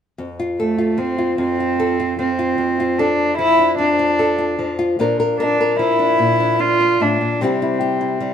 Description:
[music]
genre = folk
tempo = 50 BPM (dotted quarters)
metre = 6/8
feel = straight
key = F major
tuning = A4 = 439 Hz
[part]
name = nylon-string guitar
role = accompaniment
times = 0.2-8.3 s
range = F2 to Bb4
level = -20 LUFS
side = left 2 dB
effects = none
[part]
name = warm cello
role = melody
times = 0.6-8.3 s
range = A3 to F4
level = -17 LUFS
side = right 1 dB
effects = none
[sound]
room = moderate stone room reverb, RT60 1.2 s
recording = band playing live in one room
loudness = -15 LUFS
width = side -8 dB against mid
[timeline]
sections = 0.2-8.3 A section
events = none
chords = 0.2 F6; 5.0 Bb; 7.4 C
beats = | 0.19 1.39 | 2.59 3.80 | 5.00 6.20 | 7.41

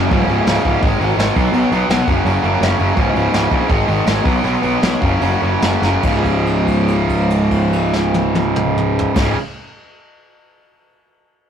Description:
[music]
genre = punk rock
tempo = 142-168 BPM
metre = 4/4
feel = straight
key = unclear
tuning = A4 = 440 Hz
[part]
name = distorted electric guitar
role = riff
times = 0.0-9.4 s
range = Db2 to Cb4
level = -20 LUFS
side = left 6 dB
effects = overdrive
[part]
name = distorted electric guitar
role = riff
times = 0.0-9.4 s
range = Db2 to Cb4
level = -18 LUFS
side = right 5 dB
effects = distortion
[part]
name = fuzz picked electric bass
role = bass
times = 0.0-9.3 s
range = Db1 to Cb2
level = -19 LUFS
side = equal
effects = overdrive
[part]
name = vintage brush drum kit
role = drums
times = 0.1-9.3 s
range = crash cymbal, hi-hat, kick drum, snare drum, toms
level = -20 LUFS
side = equal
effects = none
[sound]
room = light reverb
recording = rough rehearsal-room recording, tube saturation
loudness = -13 LUFS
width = side -8 dB against mid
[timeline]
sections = 0.1-6.0 A section; 6.0-9.4 B section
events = slowing down 3.0-6.0; drum fill 5.8; held note 6.0-9.2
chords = 0.1 Db5; 0.8 Ab5; 1.4 Cb5; 2.1 Gb5; 3.0 Db5; 3.7 Ab5; 4.2 Cb5; 5.0 Gb5; 6.0 Db5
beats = | 0.11 0.47 0.82 1.18 | 1.54 1.90 2.25 2.61 | 2.97 3.33 3.69 4.06 | 4.44 4.82 5.21 5.61 | 6.03 6.45 6.87 7.29 | 7.72 8.14 8.56 8.99

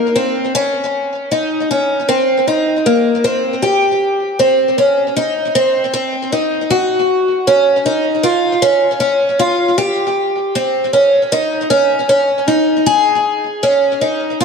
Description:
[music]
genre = dream pop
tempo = 78 BPM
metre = 4/4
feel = straight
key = unclear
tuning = A4 = 441 Hz
[part]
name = picked twelve-string acoustic guitar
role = solo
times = 0.0-14.4 s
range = Bb3 to Ab4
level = -12 LUFS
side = equal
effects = wide subtle chorus, tape echo
[sound]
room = moderate echo chamber reverb, RT60 1.5 s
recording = echo-heavy mix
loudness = -12 LUFS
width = side -5 dB against mid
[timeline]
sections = 0.0-3.6 A section; 3.6-14.4 B section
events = none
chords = none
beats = | 0.55 1.32 2.09 2.86 | 3.63 4.40 5.17 5.94 | 6.71 7.47 8.24 9.01 | 9.78 10.55 11.32 12.09 | 12.86 13.63 14.40

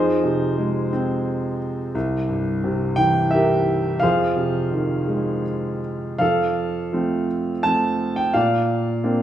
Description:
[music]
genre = classical, lyrical solo piano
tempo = 79-89 BPM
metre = 3/4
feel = rubato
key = F minor, F major from 6.2 s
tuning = A4 = 439 Hz
[part]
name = warm grand piano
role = solo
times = 0.0-9.2 s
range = C2 to A5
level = -19 LUFS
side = equal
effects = none
[sound]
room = moderate concert hall reverb, RT60 1.9 s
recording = studio reverb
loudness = -19 LUFS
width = side -11 dB against mid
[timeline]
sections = 0.0-6.2 A section; 6.2-9.2 B section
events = grand piano fill 9.0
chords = 0.0 Fm7; 2.0 C7; 4.0 Fm7; 6.2 F; 8.4 Bbadd9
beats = 0.58 1.27 | 1.95 2.63 3.32 | 4.02 4.72 5.46 | 6.21 6.93 7.65 | 8.35 9.05

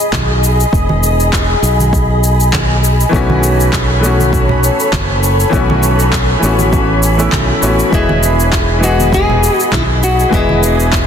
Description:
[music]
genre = sunset chillout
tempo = 100 BPM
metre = 4/4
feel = swing 54% on 16ths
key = E major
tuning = A4 = 442 Hz
[part]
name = soft string machine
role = sustained chords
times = 0.0-11.1 s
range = G#4 to B5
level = -17 LUFS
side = equal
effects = ensemble chorus
[part]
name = electronic shaker and handclaps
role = drums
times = 0.0-11.1 s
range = none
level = -19 LUFS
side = left 1 dB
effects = overdrive
[part]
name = modern bright fingered electric bass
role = bass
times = 0.1-11.1 s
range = E1 to B1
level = -14 LUFS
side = equal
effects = none
[part]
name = electronic kick drum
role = drums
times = 0.1-11.1 s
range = none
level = -18 LUFS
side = equal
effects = overdrive
[part]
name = congas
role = percussion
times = 0.1-10.6 s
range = none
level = -22 LUFS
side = right 3 dB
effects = none
[part]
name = clear grand piano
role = accompaniment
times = 3.1-11.1 s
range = E3 to D#5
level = -16 LUFS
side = moving between left 5 dB and right 3 dB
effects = auto-pan, tape echo
[part]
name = nylon-string guitar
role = melody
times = 7.9-11.1 s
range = E4 to G#4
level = -16 LUFS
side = left 1 dB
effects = digital delay
[sound]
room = moderate lush hall reverb, RT60 2.0 s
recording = dense, heavily limited modern master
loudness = -10 LUFS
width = side -8 dB against mid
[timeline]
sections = 0.0-11.1 A section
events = none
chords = 0.0 Emaj7; 3.1 B9sus4; 7.9 Emaj7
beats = 0.13 | 0.73 1.33 1.93 2.53 | 3.13 3.73 4.33 4.93 | 5.53 6.13 6.73 7.33 | 7.93 8.53 9.13 9.73 | 10.33 10.93

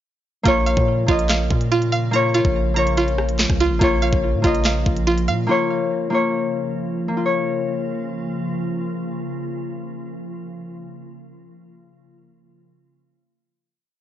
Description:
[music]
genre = hip hop, drill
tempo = 143 BPM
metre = 4/4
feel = half-time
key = Bb minor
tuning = A4 = 435 Hz
[part]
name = concert harp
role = accompaniment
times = 0.4-10.4 s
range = Bb3 to Eb5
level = -22 LUFS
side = left 2 dB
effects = none
[part]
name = glassy FM pad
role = sustained chords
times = 0.8-10.3 s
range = Db3 to F4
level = -27 LUFS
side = equal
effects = ensemble chorus, built-in reverb
[part]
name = string-like resonator pluck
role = arpeggios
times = 0.5-6.5 s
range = F4 to Bb5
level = -23 LUFS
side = right 3 dB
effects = chorus, analog delay
[part]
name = long sustained 808-style bass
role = bass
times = 0.5-5.5 s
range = A1 to Bb2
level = -22 LUFS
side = equal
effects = none
[part]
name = drill drum kit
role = drums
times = 0.5-5.3 s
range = handclaps, hi-hat, kick drum, rim click, snare drum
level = -22 LUFS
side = equal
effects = none
[sound]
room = little or no reverb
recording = dry, gritty hardware recording, nothing above 7.5 kHz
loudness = -18 LUFS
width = side -12 dB against mid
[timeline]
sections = 0.5-7.2 hook; 7.2-10.5 final chord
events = none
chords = 0.5 Bbm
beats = | 0.46 0.88 1.29 1.71 | 2.13 2.55 2.97 3.39 | 3.81 4.23 4.65 5.07 | 5.49 5.91 6.33 6.75 | 7.17 7.59 8.01 8.43 | 8.85 9.27 9.69 10.11

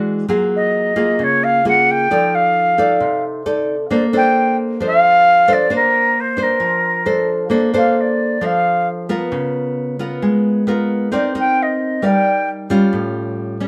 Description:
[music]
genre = bossa nova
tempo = 133 BPM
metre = 4/4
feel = straight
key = Bb major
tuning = A4 = 440 Hz
[part]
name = nylon-string guitar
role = accompaniment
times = 0.0-13.7 s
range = A2 to D5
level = -20 LUFS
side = equal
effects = none
[part]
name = reedy silver concert flute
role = melody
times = 0.6-12.5 s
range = Bb4 to G5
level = -17 LUFS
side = equal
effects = none
[sound]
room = moderate studio reverb, RT60 0.7 s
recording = band playing live in one room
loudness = -16 LUFS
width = mono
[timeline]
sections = 0.0-7.5 A section; 7.5-13.7 B section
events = flute solo 7.5-13.7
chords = 0.3 Gbmaj9; 2.1 F6; 3.9 Bbmaj9; 9.3 Db6; 11.1 Cm9; 12.9 A7b13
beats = | 0.29 0.74 1.19 1.64 | 2.09 2.54 3.00 3.45 | 3.90 4.35 4.80 5.25 | 5.70 6.16 6.61 7.06 | 7.51 7.96 8.41 8.86 | 9.32 9.77 10.22 10.67 | 11.12 11.57 12.02 12.48 | 12.93 13.38

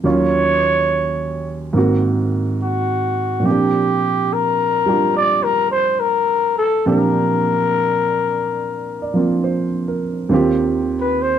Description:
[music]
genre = jazz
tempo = 70 BPM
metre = 4/4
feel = swing 66% on 8ths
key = Bb major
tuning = A4 = 440 Hz
[part]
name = warm baby grand piano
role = accompaniment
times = 0.0-11.4 s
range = Eb2 to D5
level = -18 LUFS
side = right 2 dB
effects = none
[part]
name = growling trumpet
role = melody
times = 0.1-11.4 s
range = Gb4 to D5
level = -17 LUFS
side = left 2 dB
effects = none
[sound]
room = moderate small room reverb, RT60 0.6 s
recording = dry, close 1970s-style studio recording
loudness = -15 LUFS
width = side -9 dB against mid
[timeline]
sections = 0.0-10.3 A section; 10.3-11.4 B section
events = trumpet solo 10.3-11.4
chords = 0.0 Ebm7; 1.8 Ab9; 3.5 Bb6; 10.3 Eb6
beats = | 0.05 0.90 1.75 2.60 | 3.46 4.31 5.16 6.01 | 6.87 7.72 8.59 9.45 | 10.31 11.17

